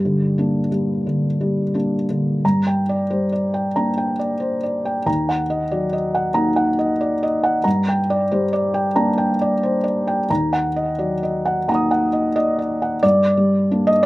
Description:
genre	neoclassical minimalist piano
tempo	86-93 BPM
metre	4/4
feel	rubato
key	G harmonic minor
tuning	A4 = 441 Hz
part	felt-muted upright piano	solo	0.0-14.1 s	Eb2 to Eb6	-17 LUFS	equal	none
room	little or no reverb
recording	recorded outdoors, with no room sound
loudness	-17 LUFS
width	side -18 dB against mid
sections	0.0-2.4 A section; 2.4-13.0 B section; 13.0-14.1 C section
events	none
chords	0.0 Gm; 5.1 Ebm; 7.7 Gm; 10.3 Ebm; 13.0 Gm

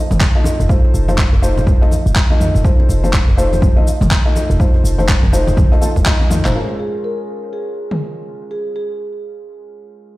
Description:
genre	afro house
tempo	123 BPM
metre	4/4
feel	swing 60% on 16ths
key	unclear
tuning	A4 = 439 Hz
part	warm 808-style bass	bass	0.1-6.5 s	Eb1 to F1	-16 LUFS	equal	sidechain pumping
part	deep house drum kit	drums	0.1-8.0 s	handclaps, shaker, toms	-21 LUFS	equal	studio reverb
part	congas	percussion	0.1-6.5 s	none	-25 LUFS	left 1 dB	none
part	djembe	percussion	0.1-6.4 s	none	-23 LUFS	right 1 dB	none
part	electronic kick drum	drums	0.2-6.2 s	none	-14 LUFS	equal	studio reverb
part	felt-muted upright piano	stabs	0.4-10.2 s	Ab3 to Eb5	-22 LUFS	left 1 dB	sidechain pumping, low-pass filter, dub echo
part	marimba with soft mallets	melody	6.8-9.7 s	Ab4 to Bb4	-25 LUFS	right 1 dB	tape echo
room	light reverb, small room ambience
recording	played on a big sound system in a bare room, stone room reverb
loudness	-12 LUFS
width	side -18 dB against mid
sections	0.0-6.5 A section; 6.5-10.2 B section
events	drum fill 6.1-6.5; filter sweep on felt piano 6.5-10.2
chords	0.0 F7; 6.5 Bbm7

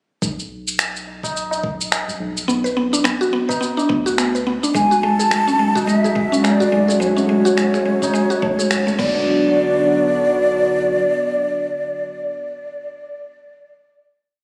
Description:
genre	organic downtempo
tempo	106 BPM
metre	4/4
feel	swing 58% on 16ths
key	B dorian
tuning	A4 = 439 Hz
part	round analog bass	bass	0.2-10.9 s	B1 to D2	-30 LUFS	equal	sidechain pumping
part	dusty soul sampler-style drum kit	drums	0.2-9.1 s	crash cymbal, finger snaps, shaker	-26 LUFS	equal	none
part	electronic kick drum	drums	0.2-9.1 s	none	-30 LUFS	equal	none
part	tabla	percussion	1.1-9.3 s	none	-31 LUFS	equal	none
part	mallet-like synth pluck	arpeggios	2.5-9.5 s	G#3 to B4	-21 LUFS	equal	chorus, digital delay
part	breathy hollow ney	melody	4.7-12.3 s	C#5 to A5	-22 LUFS	equal	digital delay
part	warm analog pad	sustained chords	4.7-12.3 s	C#3 to F#4	-23 LUFS	equal	chorus, sidechain pumping
room	moderate lush hall reverb, RT60 2.4 s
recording	recorded on a phone in the room, club reverb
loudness	-18 LUFS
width	mono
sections	0.2-9.3 groove; 9.3-11.5 final hit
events	band accent 8.7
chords	0.2 Bm; 4.7 F#madd9/B; 9.0 Bm

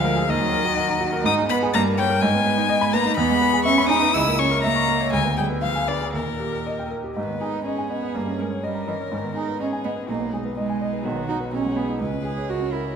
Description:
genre	quick classical-period movement for piano trio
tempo	124 BPM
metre	2/4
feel	rubato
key	G# minor from 3.2 s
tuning	A4 = 438 Hz
part	warm violin	melody	0.0-13.0 s	D#4 to E6	-25 LUFS	left 7 dB	none
part	dark cello	second line	0.0-13.0 s	A#2 to G#4	-25 LUFS	right 5 dB	none
part	warm concert grand piano	accompaniment	0.0-13.0 s	B1 to C#6	-24 LUFS	equal	none
room	wet scoring stage reverb, RT60 1.6 s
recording	none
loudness	-20 LUFS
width	side -7 dB against mid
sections	0.0-7.2 A section; 7.2-13.0 B section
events	none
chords	0.3 Ebm; 1.3 Abm; 1.7 Gdim; 2.2 Abm; 3.2 E; 4.1 A#dim/C#; 5.1 Ddim7; 6.1 D#; 7.2 G#m; 8.2 D#7/G; 9.1 G#m; 10.1 G#m/B; 11.0 B; 11.5 G#m/B; 12.0 C#5; 12.5 A#dim/C#

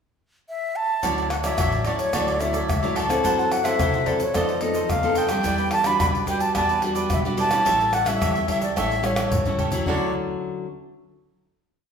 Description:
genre	samba and choro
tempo	109 BPM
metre	4/4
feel	straight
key	D major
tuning	A4 = 439 Hz
part	mellow jazz flute	melody	0.5-10.1 s	C#5 to B5	-24 LUFS	equal	none
part	cavaquinho	accompaniment	1.0-10.1 s	E4 to F#5	-29 LUFS	right 4 dB	none
part	nylon-string guitar	accompaniment	1.0-10.7 s	A2 to A4	-26 LUFS	left 1 dB	none
part	upright bass	bass	1.0-10.1 s	A1 to C3	-31 LUFS	equal	none
part	egg shaker, surdo, pandeiro and tamborim	percussion	1.0-10.0 s	none	-27 LUFS	equal	none
room	wet large studio reverb, RT60 1.2 s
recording	band playing live in one room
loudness	-20 LUFS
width	side -6 dB against mid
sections	0.0-1.0 pickup bar; 1.0-9.9 A section; 9.9-11.9 final chord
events	drum fill 9.0-9.9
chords	0.0 N.C.; 1.0 Dmaj9; 3.2 F#m7b5; 4.3 F7#11; 5.4 Em9; 7.7 A7; 9.9 Dmaj9

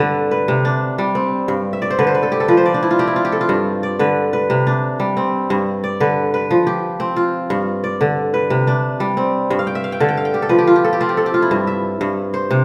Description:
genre	west african traditional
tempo	120 BPM (dotted quarters)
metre	12/8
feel	straight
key	unclear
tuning	A4 = 440 Hz
part	kora	solo	0.0-12.6 s	G2 to A5	-17 LUFS	equal	none
room	wet recital hall reverb, RT60 1.8 s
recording	none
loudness	-17 LUFS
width	mono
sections	0.0-11.5 A section; 11.5-12.6 B section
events	kora fill 1.7-3.5, 9.6-11.5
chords	0.5 C5; 1.5 G5; 2.5 F5; 3.5 G; 4.5 C5; 5.5 G; 6.5 F5; 7.5 G; 8.5 C5; 9.5 G5; 10.5 F5; 11.5 C/G

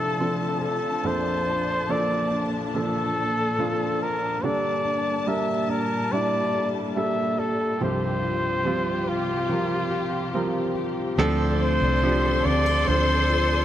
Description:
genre	pop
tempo	71 BPM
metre	4/4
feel	straight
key	D minor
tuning	A4 = 436 Hz
part	clear flugelhorn	melody	0.0-13.6 s	F4 to E5	-26 LUFS	left 1 dB	none
part	warm baby grand piano	accompaniment	0.0-13.6 s	Bb1 to C5	-27 LUFS	right 3 dB	none
part	warm studio string section	sustained chords	0.0-13.6 s	Bb2 to C6	-30 LUFS	left 2 dB	none
part	fingerpicked plugged-in steel-string acoustic guitar	arpeggios	0.0-13.6 s	G2 to A4	-32 LUFS	left 4 dB	none
part	vintage muted fingered electric bass	bass	11.2-13.6 s	C2 to D2	-24 LUFS	equal	none
room	moderate plate reverb, RT60 2.8 s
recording	none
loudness	-22 LUFS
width	side -11 dB against mid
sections	0.0-11.2 A section; 11.2-13.6 B section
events	none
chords	0.0 Dm7; 1.0 Bbmaj7; 4.4 Gmadd9; 7.8 Csus4; 11.2 Dm7

